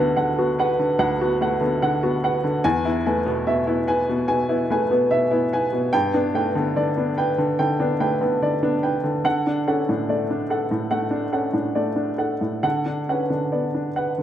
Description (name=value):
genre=neoclassical minimalist piano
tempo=72 BPM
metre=4/4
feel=rubato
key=B minor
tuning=A4 = 440 Hz
part: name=warm upright piano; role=solo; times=0.0-14.2 s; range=D2 to G#5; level=-19 LUFS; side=equal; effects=none
room=moderate concert hall reverb, RT60 1.8 s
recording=none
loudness=-19 LUFS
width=side -10 dB against mid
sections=0.0-14.2 A section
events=none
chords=0.0 Bm/D; 2.6 E; 5.9 G; 9.2 D; 12.6 Bm/D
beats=0.15 0.99 1.82 | 2.64 3.46 4.29 5.11 | 5.94 6.77 7.60 8.42 | 9.25 10.09 10.92 11.76 | 12.64 13.54